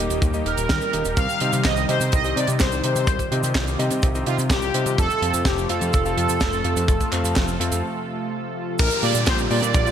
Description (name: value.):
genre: italo disco.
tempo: 126 BPM.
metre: 4/4.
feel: straight.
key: unclear.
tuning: A4 = 439 Hz.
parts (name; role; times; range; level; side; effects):
analog synth brass; melody; 0.0-9.9 s; F4 to F5; -25 LUFS; right 1 dB; chorus, tape echo.
lush unison pad; sustained chords; 0.0-9.9 s; Bb2 to A4; -28 LUFS; equal; chorus, phaser.
warm electric grand piano; stabs; 0.0-9.9 s; Bb3 to F5; -29 LUFS; left 2 dB; low-pass filter.
fat analog bass; bass; 0.0-9.9 s; Eb1 to C3; -25 LUFS; equal; none.
tight funk drum kit; drums; 0.1-9.9 s; cabasa, crash cymbal, handclaps, hi-hat, snare drum; -27 LUFS; right 2 dB; gated reverb.
kick drum; drums; 0.2-9.8 s; none; -22 LUFS; equal; none.
downlifter; sound effects; 8.8-9.9 s; none; -27 LUFS; right 3 dB; none.
room: light reverb, small room ambience.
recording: none.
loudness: -19 LUFS.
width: side -9 dB against mid.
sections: 0.0-8.8 A section; 8.8-9.9 B section.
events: break 7.8-8.8.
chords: 0.0 Eb; 1.2 Cm; 5.0 F; 8.8 Bb6.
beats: 0.22 0.70 | 1.17 1.65 2.12 2.60 | 3.08 3.55 4.03 4.51 | 4.98 5.46 5.93 6.41 | 6.89 7.36 7.84 8.32 | 8.79 9.27 9.74.